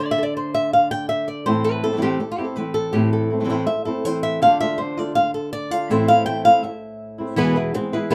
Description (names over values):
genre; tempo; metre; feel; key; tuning
flamenco; 162 BPM; 4/4; straight; A minor; A4 = 440 Hz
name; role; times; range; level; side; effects
flamenco guitar; melody; 0.0-8.1 s; A2 to G5; -22 LUFS; equal; none
flamenco guitar; stabs; 1.5-8.1 s; E2 to F4; -27 LUFS; equal; none
room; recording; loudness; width
light reverb; faint mains hum; -20 LUFS; mono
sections
0.0-7.4 A section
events
nylon-string guitar solo 0.0-7.4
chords
0.0 D5; 1.5 Am; 4.4 Dm; 5.9 Am; 7.4 E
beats
0.35 0.72 1.09 | 1.46 1.83 2.20 2.57 | 2.94 3.31 3.68 4.05 | 4.42 4.79 5.16 5.53 | 5.90 6.27 6.64 7.01 | 7.38 7.75 8.12